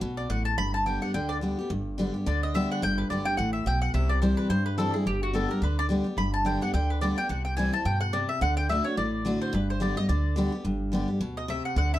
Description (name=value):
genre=bluegrass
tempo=215 BPM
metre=4/4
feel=swing 56% on 8ths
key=G major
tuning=A4 = 439 Hz
part: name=picked steel-string acoustic guitar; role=accompaniment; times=0.0-12.0 s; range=G2 to G4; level=-28 LUFS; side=left 1 dB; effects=none
part: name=upright bass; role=bass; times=0.0-12.0 s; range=G1 to G2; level=-29 LUFS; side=equal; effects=none
part: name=mandolin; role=melody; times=0.2-12.0 s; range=F#4 to B5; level=-30 LUFS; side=equal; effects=none
room=light reverb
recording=dark, warm production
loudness=-25 LUFS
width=side -14 dB against mid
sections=0.0-1.7 A section; 1.7-10.7 B section; 10.7-12.0 C section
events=mandolin solo 10.7-12.0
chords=0.0 D; 0.6 G; 3.9 C; 5.1 G; 7.3 C; 8.4 D; 9.5 G